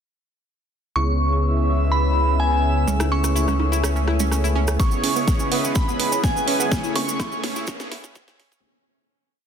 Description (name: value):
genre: progressive house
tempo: 125 BPM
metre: 4/4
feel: straight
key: C# minor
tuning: A4 = 441 Hz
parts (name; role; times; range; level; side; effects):
- glassy synth bell; melody; 1.0-7.6 s; G#5 to C#6; -26 LUFS; equal; chorus, tremolo, vintage 12-bit sampler grit, dub echo
- lush unison pad; sustained chords; 1.0-8.6 s; C#3 to E5; -30 LUFS; left 2 dB; chorus, sidechain pumping
- soft supersaw; stabs; 1.0-8.6 s; C#3 to C#5; -27 LUFS; right 2 dB; cassette tape, sidechain pumping, low-pass filter, dub echo
- round analog bass; bass; 1.0-8.6 s; G#1 to C#2; -22 LUFS; left 1 dB; sidechain pumping, high-pass filter
- drifting glass-harmonics texture; texture; 1.5-4.8 s; E6; -37 LUFS; right 1 dB; chorus, built-in reverb, sidechain pumping
- analog pluck; arpeggios; 2.9-8.6 s; B3 to E4; -28 LUFS; right 3 dB; chorus, sidechain pumping, dub echo
- electronic congas and rim click; percussion; 2.9-4.8 s; none; -28 LUFS; right 4 dB; sidechain pumping on perc, soft clipping on snare, sidechain pumping on snare
- maracas; percussion; 2.9-8.6 s; none; -31 LUFS; right 4 dB; none
- airy dreamy lead; second line; 4.8-7.6 s; G#5 to C#6; -33 LUFS; right 3 dB; chorus, sidechain pumping, dub echo
- electronic kick drum; drums; 4.8-8.3 s; none; -22 LUFS; equal; none
- house drum kit; drums; 4.8-8.6 s; hi-hat, snare drum, woodblock; -27 LUFS; right 1 dB; low-pass filter on snare, low-pass filter on hats, low-pass filter on perc, low-pass filter on room
- riser; sound effects; 5.7-8.6 s; none; -39 LUFS; left 1 dB; none
room: light reverb, digital ambience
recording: dense, heavily limited modern master, high-pass filter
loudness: -18 LUFS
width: side -8 dB against mid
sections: 1.0-4.8 intro; 4.8-8.6 build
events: filter sweep on analog synth pad 1.0-4.8; build-up 4.8-8.6; drum fill 4.8-8.6; filter sweep on synth arpeggio sound 4.8-8.6; filter sweep 4.8-8.6; riser 5.7-8.6; fade-out 6.7-8.6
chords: 1.0 C#m7; 2.9 Amaj7/C#; 4.8 C#m7; 6.7 Amaj7